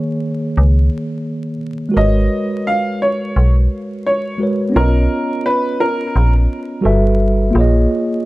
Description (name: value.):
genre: lo-fi hip hop.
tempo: 86 BPM.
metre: 4/4.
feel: swing 56% on 16ths.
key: G# dorian.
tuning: A4 = 440 Hz.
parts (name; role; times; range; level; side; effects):
mellow tine electric piano; accompaniment; 0.0-8.3 s; D#3 to E5; -18 LUFS; equal; medium stereo tremolo, cassette tape.
metallic FM bass; bass; 0.6-7.9 s; G1 to C#2; -13 LUFS; equal; none.
warm upright piano; melody; 2.0-6.3 s; A#4 to E#5; -19 LUFS; equal; tape echo.
room: light reverb.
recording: dark, warm production, vinyl crackle.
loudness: -14 LUFS.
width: side -18 dB against mid.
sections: 0.0-8.3 A section.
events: none.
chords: 0.0 D#7sus4; 2.0 G#m11; 4.7 Bmaj9#11; 6.8 Gmaj13; 7.5 A#m11.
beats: 0.56 1.26 | 1.96 2.65 3.35 4.05 | 4.75 5.45 6.14 6.84 | 7.54 8.24.